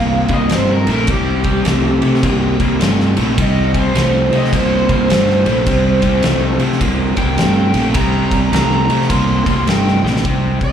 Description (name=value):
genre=blues rock power trio and southern rock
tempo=105 BPM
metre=4/4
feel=swing 63% on 8ths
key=C minor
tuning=A4 = 440 Hz
part: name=overdriven slide guitar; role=melody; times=0.0-10.7 s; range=G4 to C6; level=-20 LUFS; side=equal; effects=slapback echo
part: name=crunchy overdriven guitar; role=riff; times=0.0-10.7 s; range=C3 to Bb3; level=-17 LUFS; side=equal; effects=slapback echo
part: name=fuzz fingered electric bass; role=bass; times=0.0-10.7 s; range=Bb1 to C3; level=-17 LUFS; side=equal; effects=overdrive
part: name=oversized low-tuned drum kit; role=drums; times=0.3-10.7 s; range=kick drum, ride cymbal, snare drum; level=-19 LUFS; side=equal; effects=none
room=studio reverb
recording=live gig heard through the venue's PA, club reverb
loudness=-12 LUFS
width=side -8 dB against mid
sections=0.0-10.3 A section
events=electric slide guitar solo 0.0-10.3; drum fill 10.0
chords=0.0 C5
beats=0.51 | 1.09 1.66 2.23 2.81 | 3.38 3.96 4.53 5.10 | 5.67 6.25 6.82 7.39 | 7.96 8.54 9.11 9.68 | 10.25